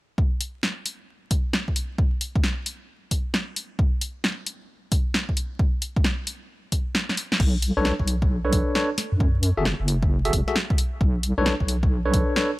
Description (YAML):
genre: UK garage, two-step garage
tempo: 133 BPM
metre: 4/4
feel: swing 65% on 16ths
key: B dorian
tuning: A4 = 440 Hz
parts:
  - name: electronic kick drum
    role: drums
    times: 0.2-12.3 s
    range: none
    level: -23 LUFS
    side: equal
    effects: none
  - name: punchy analog drum machine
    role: drums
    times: 0.4-12.5 s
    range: crash cymbal, hi-hat, snare drum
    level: -25 LUFS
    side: equal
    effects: none
  - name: deep soft wobble bass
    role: bass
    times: 7.4-12.2 s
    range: F#1 to F#2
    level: -24 LUFS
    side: equal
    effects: chorus, sidechain pumping
  - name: bright tine electric piano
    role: stabs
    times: 7.8-12.5 s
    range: D4 to E5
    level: -26 LUFS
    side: moving between left 4 dB and right 3 dB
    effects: auto-pan, dub echo
room: little or no reverb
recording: vinyl crackle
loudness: -21 LUFS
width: side -19 dB against mid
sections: 0.2-7.4 A section; 7.4-12.6 B section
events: drum fill 7.1-7.4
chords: 0.2 N.C.; 7.4 Bm9; 9.0 N.C.; 11.0 Bm9